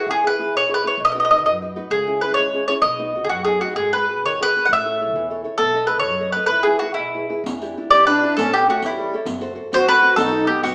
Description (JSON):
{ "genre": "italian folk, Italian serenade", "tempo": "131 BPM (dotted quarters)", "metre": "6/8", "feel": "rubato", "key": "E major, E minor from 7.4 s", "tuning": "A4 = 441 Hz", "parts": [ { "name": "mandolin", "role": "melody", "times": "0.0-10.7 s", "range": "E4 to F#5", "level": "-19 LUFS", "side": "equal", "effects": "none" }, { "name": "nylon-string guitar", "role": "accompaniment", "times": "0.0-10.7 s", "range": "B2 to D#5", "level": "-29 LUFS", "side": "equal", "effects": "none" }, { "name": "upright bass", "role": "bass", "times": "0.1-10.7 s", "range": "F#1 to F#2", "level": "-40 LUFS", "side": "equal", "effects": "none" }, { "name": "riq", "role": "percussion", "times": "7.5-10.7 s", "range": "none", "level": "-32 LUFS", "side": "equal", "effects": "none" }, { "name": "accordion", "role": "second line", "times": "7.9-10.7 s", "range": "G3 to G4", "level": "-25 LUFS", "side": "equal", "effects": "light tremolo tuning" } ], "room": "wet large studio reverb, RT60 1.2 s", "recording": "band playing live in one room, small speaker sound", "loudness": "-19 LUFS", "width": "mono", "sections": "0.1-7.4 A section; 7.4-10.7 B section", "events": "none", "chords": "0.1 E; 1.0 B; 1.9 C#m; 2.8 B; 3.8 G#m7; 4.7 A; 5.6 B7; 6.5 E; 7.4 Em7; 8.4 A7; 9.3 F#dim; 10.2 B", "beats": "| 0.07 0.53 | 0.99 1.45 | 1.90 2.36 | 2.82 3.29 | 3.76 4.23 | 4.69 5.15 | 5.60 6.05 | 6.51 6.97 | 7.44 7.91 | 8.37 8.82 | 9.27 9.72 | 10.18 10.64" }